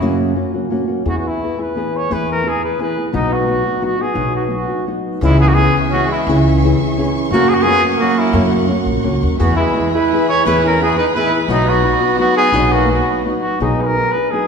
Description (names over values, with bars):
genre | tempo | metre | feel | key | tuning
mexican folk, mariachi | 172 BPM | 3/4 | rubato | B major | A4 = 437 Hz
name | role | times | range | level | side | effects
warm trumpet | melody | 0.0-14.5 s | D#4 to C#5 | -18 LUFS | equal | none
nylon-string guitar | accompaniment | 0.0-14.5 s | F#2 to G#4 | -17 LUFS | equal | none
upright bass | bass | 0.0-13.7 s | A#1 to F#2 | -19 LUFS | left 1 dB | none
mellow trumpet | second line | 5.2-13.2 s | F#3 to E4 | -22 LUFS | right 3 dB | none
warm studio violin section | sustained chords | 5.2-13.6 s | F#4 to C#6 | -26 LUFS | right 1 dB | none
room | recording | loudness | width
wet scoring stage reverb, RT60 1.9 s | recorded in a church or concert hall | -13 LUFS | side -6 dB against mid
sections
0.0-5.2 A section; 5.2-13.6 A section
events
none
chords
0.0 F#; 1.1 E; 3.1 B; 5.2 C#m; 7.3 F#; 9.4 E; 11.5 B; 13.6 B6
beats
0.33 0.69 | 1.05 1.41 1.76 | 2.10 2.45 2.79 | 3.13 3.48 3.83 | 4.17 4.52 4.88 | 5.23 5.58 5.93 | 6.28 6.62 6.96 | 7.31 7.65 8.00 | 8.34 8.69 9.04 | 9.40 9.75 10.10 | 10.45 10.80 11.15 | 11.50 11.84 12.18 | 12.53 12.88 13.24 | 13.60 13.96 14.31